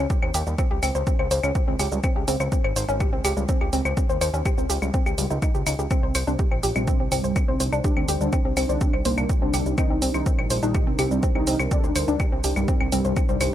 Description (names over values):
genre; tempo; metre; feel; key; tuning
melodic techno; 124 BPM; 4/4; straight; C minor; A4 = 442 Hz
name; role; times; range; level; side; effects
woody wave-folded pluck; arpeggios; 0.0-13.5 s; G3 to C5; -27 LUFS; left 1 dB; wide subtle chorus, cassette tape, sidechain pumping, ping-pong delay
fat analog bass; bass; 0.0-13.5 s; Ab1 to Eb2; -26 LUFS; equal; sidechain pumping
electronic kick drum; drums; 0.1-13.3 s; none; -23 LUFS; equal; none
electronic shaker, claves and hi-hat; drums; 0.1-13.5 s; none; -30 LUFS; equal; none
fat analog lead; melody; 5.9-13.5 s; G3 to Eb4; -28 LUFS; equal; ensemble chorus, sidechain pumping, ping-pong delay
dark analog pad; sustained chords; 7.5-13.5 s; G3 to C5; -32 LUFS; right 1 dB; chorus, sidechain pumping
room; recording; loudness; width
digital ambience; none; -20 LUFS; side -11 dB against mid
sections
0.0-13.5 A section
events
none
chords
0.0 Db5; 5.9 Cmadd9